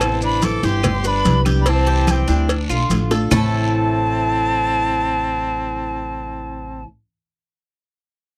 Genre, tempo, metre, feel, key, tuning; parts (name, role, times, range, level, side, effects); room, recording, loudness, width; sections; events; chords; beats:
latin, Cuban son and guajira; 145 BPM; 4/4; straight; A minor; A4 = 439 Hz
breathy bright jazz flute; melody; 0.0-6.8 s; G5 to D6; -24 LUFS; equal
bright trumpet; second line; 0.0-6.8 s; C4 to A4; -30 LUFS; equal
nylon-string guitar; accompaniment; 0.0-6.9 s; A2 to G4; -27 LUFS; equal
Cuban tres; arpeggios; 0.0-6.8 s; A3 to B4; -29 LUFS; equal
upright bass; bass; 0.0-6.8 s; G1 to D2; -24 LUFS; equal
claves; percussion; 0.0-3.4 s; -33 LUFS; equal
congas; percussion; 0.0-3.4 s; -25 LUFS; equal
cowbell and bongos; percussion; 0.0-3.4 s; -27 LUFS; equal
guiro; percussion; 0.0-3.4 s; -37 LUFS; equal
maracas; percussion; 0.0-3.4 s; -33 LUFS; equal
little or no reverb; dry, close 1970s-style studio recording; -18 LUFS; mono
0.0-3.3 A section; 3.3-6.6 B section
drum fill 3.1
0.0 Amadd9; 0.8 G; 1.7 C; 2.5 Dm; 3.3 Am
| 0.01 0.43 0.84 1.25 | 1.67 2.08 2.50 2.91 | 3.32 3.74 4.15 4.56 | 4.98 5.39 5.80 6.22